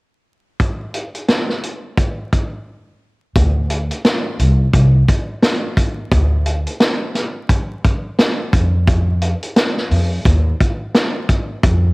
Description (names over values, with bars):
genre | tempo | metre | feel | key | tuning
hip hop, boom-bap hip-hop | 87 BPM | 4/4 | swing 60% on 16ths | unclear | A4 = 440 Hz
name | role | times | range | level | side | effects
vintage drum kit | drums | 0.6-11.8 s | hi-hat, kick drum, snare drum | -16 LUFS | equal | cassette tape
upright bass | bass | 3.4-11.9 s | C2 to E#2 | -14 LUFS | equal | tube saturation
room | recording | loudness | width
little or no reverb | home recording on cassette, vinyl crackle | -14 LUFS | side -27 dB against mid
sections
0.6-3.4 A section; 3.4-11.9 B section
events
break 2.7-3.4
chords
none